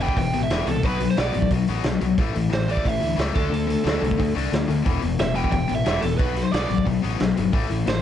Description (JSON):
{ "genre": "punk rock", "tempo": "179 BPM", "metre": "4/4", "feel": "straight", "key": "unclear", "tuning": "A4 = 441 Hz", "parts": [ { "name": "overdriven semi-hollow guitar", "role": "melody", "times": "0.0-8.0 s", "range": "A4 to G5", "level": "-28 LUFS", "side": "right 5 dB", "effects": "ping-pong delay" }, { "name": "tight distorted guitar", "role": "riff", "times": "0.0-8.0 s", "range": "E2 to D4", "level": "-24 LUFS", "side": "left 7 dB", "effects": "distortion" }, { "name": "fuzz picked electric bass", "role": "bass", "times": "0.0-8.0 s", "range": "E1 to D2", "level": "-26 LUFS", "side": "right 1 dB", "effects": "overdrive" }, { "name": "loose indie drum kit", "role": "drums", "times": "0.0-8.0 s", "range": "hi-hat, kick drum, snare drum", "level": "-26 LUFS", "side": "right 1 dB", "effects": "none" } ], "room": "little or no reverb", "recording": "nothing above 10.6 kHz", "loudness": "-20 LUFS", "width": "side -10 dB against mid", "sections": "0.0-8.0 A section", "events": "none", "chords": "0.0 E5; 0.8 Bm; 2.2 A5; 3.4 D5; 4.9 E5; 6.2 Bm" }